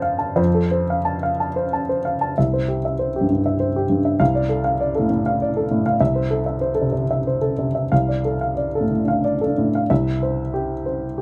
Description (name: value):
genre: neoclassical minimalist piano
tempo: 88-101 BPM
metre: 3/4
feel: rubato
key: C major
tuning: A4 = 438 Hz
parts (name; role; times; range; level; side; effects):
- warm baby grand piano; solo; 0.0-11.2 s; C2 to A5; -21 LUFS; equal; none
room: little or no reverb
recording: close, detailed microphones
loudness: -21 LUFS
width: mono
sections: 0.0-2.4 A section; 2.4-9.9 B section; 9.9-11.2 C section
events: none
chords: 0.0 F; 2.4 C; 4.2 Dm/C; 6.0 Am/C; 7.9 Dm/C; 9.9 C